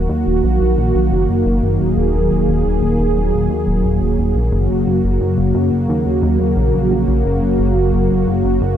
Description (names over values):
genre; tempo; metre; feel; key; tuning
synthwave; 88 BPM; 4/4; straight; Eb minor; A4 = 440 Hz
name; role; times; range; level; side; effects
warm analog pad; sustained chords; 0.0-8.8 s; Db3 to Ab4; -16 LUFS; equal; chorus
chorused synth bass; bass; 0.0-8.8 s; Eb1 to Gb2; -17 LUFS; equal; none
room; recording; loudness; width
light reverb; none; -14 LUFS; side -10 dB against mid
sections
0.0-8.8 A section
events
none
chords
0.0 Ebm; 4.5 Gb